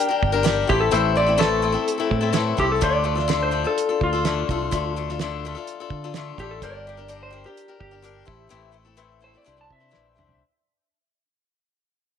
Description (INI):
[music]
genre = folk rock and heartland rock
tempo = 126 BPM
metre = 4/4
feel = straight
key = D minor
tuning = A4 = 440 Hz
[part]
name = clean lap steel guitar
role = second line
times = 0.0-10.4 s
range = F4 to A5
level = -24 LUFS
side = left 1 dB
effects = none
[part]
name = picked swing-style acoustic guitar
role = accompaniment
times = 0.0-10.4 s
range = A2 to C5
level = -24 LUFS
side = left 9 dB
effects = none
[part]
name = cloth-damped thuddy drum kit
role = drums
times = 0.0-10.4 s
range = hi-hat, kick drum, snare drum, toms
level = -26 LUFS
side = right 5 dB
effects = none
[part]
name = fingered electric bass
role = bass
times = 0.2-10.4 s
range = G1 to D3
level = -27 LUFS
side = right 1 dB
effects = none
[sound]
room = moderate echo chamber reverb, RT60 1.8 s, studio reverb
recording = 1960s-style stereo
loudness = -19 LUFS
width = side -8 dB against mid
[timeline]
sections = 0.0-10.4 A section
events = fade-out 0.0-10.4; electric slide guitar solo 0.0-10.4; drum fill 9.9-10.4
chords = 0.0 Gm; 0.7 Am; 2.8 Dm; 6.6 Gm; 8.3 Am; 9.5 Cadd9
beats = 0.46 | 0.93 1.40 1.88 2.35 | 2.83 3.30 3.77 4.25 | 4.72 5.20 5.67 6.14 | 6.62 7.09 7.57 8.04 | 8.52 8.99 9.47 9.95